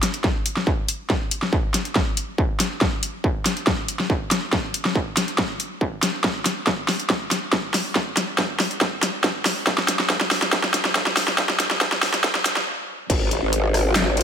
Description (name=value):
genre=heavy wobble dubstep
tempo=140 BPM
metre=4/4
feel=half-time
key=unclear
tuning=A4 = 440 Hz
part: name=dubstep drum kit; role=drums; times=0.0-14.2 s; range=crash cymbal, handclaps, hi-hat, rim click, snare drum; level=-21 LUFS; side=equal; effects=small room ambience
part: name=electronic kick drum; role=drums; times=0.2-13.2 s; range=none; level=-24 LUFS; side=equal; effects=distortion, small room ambience
part: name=growl bass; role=bass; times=13.1-14.2 s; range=G#1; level=-20 LUFS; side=equal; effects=chorus, overdrive
room=light reverb, digital ambience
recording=high-pass filter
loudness=-20 LUFS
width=side -8 dB against mid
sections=0.0-13.1 A section; 13.1-14.2 B section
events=build-up 0.0-13.1; drum fill 0.0-12.7; filter sweep 0.0-13.1; stop 12.7-13.1; drop 13.1-14.2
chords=none